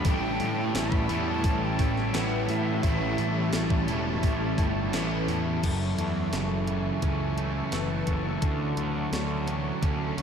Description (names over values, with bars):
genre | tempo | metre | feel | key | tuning
rock, shoegaze and dream pop | 86 BPM | 4/4 | straight | A mixolydian | A4 = 440 Hz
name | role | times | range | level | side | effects
breathy silver concert flute | melody | 0.0-3.9 s | E5 to B5 | -37 LUFS | equal | analog delay
sweeping resonant pad | sustained chords | 0.0-10.2 s | G3 to C#6 | -36 LUFS | left 2 dB | chorus
picked twelve-string acoustic guitar | arpeggios | 0.0-10.2 s | F#4 to G5 | -40 LUFS | left 7 dB | ensemble chorus, analog delay
crunchy overdriven guitar | riff | 0.0-10.2 s | F#2 to E4 | -32 LUFS | right 6 dB | reverse reverb
crunchy overdriven guitar | riff | 0.0-5.6 s | A2 to A3 | -34 LUFS | right 2 dB | ensemble chorus
thick fuzz guitar | riff | 0.0-10.2 s | F#2 to F#4 | -33 LUFS | left 6 dB | distortion, wide subtle chorus
fuzz picked electric bass | bass | 0.0-10.2 s | E1 to A2 | -31 LUFS | equal | overdrive
gated 80s digital drum machine | drums | 0.0-10.2 s | crash cymbal, hi-hat, kick drum, snare drum | -30 LUFS | equal | gated reverb, gated reverb snare
room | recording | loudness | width
wet cathedral reverb, RT60 7.3 s | dreamy mix soaked in reverb | -25 LUFS | side -7 dB against mid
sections
0.0-5.6 A section; 5.6-10.2 B section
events
none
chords
0.1 A7; 5.6 F#m7; 8.4 Dmaj7